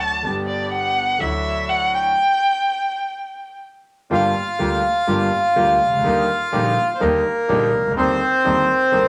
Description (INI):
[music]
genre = tango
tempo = 125 BPM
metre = 4/4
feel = rubato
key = G minor from 4.1 s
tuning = A4 = 440 Hz
[part]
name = warm violin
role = second line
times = 0.0-3.6 s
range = D5 to A5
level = -22 LUFS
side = equal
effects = none
[part]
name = warm concert grand piano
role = accompaniment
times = 0.0-9.1 s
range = G1 to G4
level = -25 LUFS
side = equal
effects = none
[part]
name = bandoneon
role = stabs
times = 0.0-9.1 s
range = A3 to G4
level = -31 LUFS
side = equal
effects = none
[part]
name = upright bass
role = bass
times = 0.0-9.1 s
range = G1 to Eb2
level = -32 LUFS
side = equal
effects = none
[part]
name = bandoneon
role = melody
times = 4.1-9.1 s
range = Bb3 to F5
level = -20 LUFS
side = equal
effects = none
[sound]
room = wet studio reverb, RT60 0.6 s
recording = none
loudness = -19 LUFS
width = mono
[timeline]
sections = 0.0-4.1 A section; 4.1-9.1 B section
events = violin solo 0.0-4.1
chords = 0.2 G; 1.2 Dadd9; 2.2 N.C.; 4.1 Gm7; 6.0 Ebmaj7; 8.0 Cmadd9/Eb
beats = | 0.24 0.72 1.20 1.68 | 2.16 2.65 3.13 3.62 | 4.11 4.59 5.08 5.56 | 6.04 6.53 7.01 7.49 | 7.96 8.44 8.92